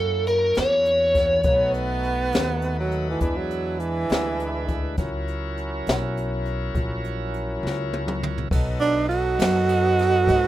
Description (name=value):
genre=slow blues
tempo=68 BPM (dotted quarters)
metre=12/8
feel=straight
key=unclear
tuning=A4 = 443 Hz
part: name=biting lead guitar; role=melody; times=0.0-1.7 s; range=A4 to C#5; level=-19 LUFS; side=equal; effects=overdrive
part: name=bright tonewheel organ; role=sustained chords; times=0.0-10.5 s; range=F#3 to B4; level=-31 LUFS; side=left 1 dB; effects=slow rotary speaker, overdrive
part: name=upright bass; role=bass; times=0.0-10.5 s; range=A#1 to G#2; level=-27 LUFS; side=left 1 dB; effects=none
part: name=jazz brush drum kit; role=drums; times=0.3-10.4 s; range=hi-hat, kick drum, ride cymbal, snare drum, toms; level=-27 LUFS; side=left 1 dB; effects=none
part: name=bright tenor saxophone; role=second line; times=1.5-10.5 s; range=E3 to F#4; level=-23 LUFS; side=right 4 dB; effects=none
part: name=mellow saxophone section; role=sustained chords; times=8.5-10.5 s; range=A4 to D#5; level=-31 LUFS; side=left 2 dB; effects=none
room=light reverb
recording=rough home demo mix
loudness=-21 LUFS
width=side -14 dB against mid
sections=0.0-8.5 A section; 8.5-10.5 B section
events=drum fill 7.6-8.5; tenor saxophone solo 8.5-10.5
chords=0.0 F#7; 1.5 B7; 3.2 E7; 5.0 F#7; 8.5 B7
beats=0.57 | 1.45 2.33 3.22 4.10 | 4.98 5.87 6.75 7.63 | 8.52 9.40 10.28